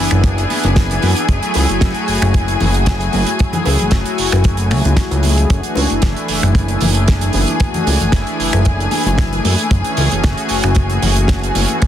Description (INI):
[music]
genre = nu-disco, nu disco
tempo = 114 BPM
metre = 4/4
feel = swing 53% on 16ths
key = F# minor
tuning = A4 = 441 Hz
[part]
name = warm analog pad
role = accompaniment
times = 0.0-11.9 s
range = E3 to G#4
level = -20 LUFS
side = left 1 dB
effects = chorus, sidechain pumping, tape echo
[part]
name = rich studio violin section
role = sustained chords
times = 0.0-11.9 s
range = G#4 to G#5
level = -22 LUFS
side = left 2 dB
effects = sidechain pumping
[part]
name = fat analog bass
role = bass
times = 0.0-11.7 s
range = F#1 to F#2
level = -16 LUFS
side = equal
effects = tube saturation, sidechain pumping
[part]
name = damped 70s drum kit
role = drums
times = 0.1-11.9 s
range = finger snaps, hi-hat, snare drum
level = -22 LUFS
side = right 3 dB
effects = small room ambience
[part]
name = bongos and congas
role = percussion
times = 0.1-11.8 s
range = none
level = -24 LUFS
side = left 3 dB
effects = none
[part]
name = kick drum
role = drums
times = 0.2-11.9 s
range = none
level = -15 LUFS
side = equal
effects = small room ambience
[sound]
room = small room ambience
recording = dense, heavily limited modern master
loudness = -13 LUFS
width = side -11 dB against mid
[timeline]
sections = 0.0-11.9 A section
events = none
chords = 0.0 D69/F#; 1.3 F#m9; 5.5 E9sus4/F#; 9.7 Amaj7/F#